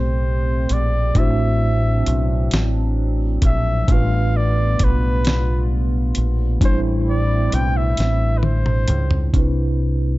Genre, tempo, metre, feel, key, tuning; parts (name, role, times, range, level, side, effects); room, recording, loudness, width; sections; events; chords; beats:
slow six-eight R&B; 44 BPM (dotted quarters); 6/8; straight; A4 = 440 Hz
warm flugelhorn; melody; 0.0-9.3 s; B4 to G5; -25 LUFS; equal; plate reverb
mellow tine electric piano; accompaniment; 0.0-10.2 s; A2 to C5; -24 LUFS; right 1 dB; medium stereo tremolo
hollow soft pad; sustained chords; 0.0-9.3 s; F#3 to G4; -29 LUFS; equal; chorus
deep dub fingered electric bass; bass; 0.0-10.2 s; A1 to C#2; -19 LUFS; equal
dusty soul sampler-style drum kit; drums; 0.7-9.6 s; hi-hat, kick drum, snare drum, toms; -19 LUFS; equal
little or no reverb; dark, warm production, nothing above 7.7 kHz; -16 LUFS; side -18 dB against mid
0.0-9.3 A section
flugelhorn solo 0.0-9.3; drum fill 8.0-9.3
0.0 Am9; 1.2 D9/A; 3.9 G9/A; 6.6 C69/A; 9.3 Cmaj9
| 1.16 2.52 | 3.89 5.25 | 6.61 7.98 | 9.34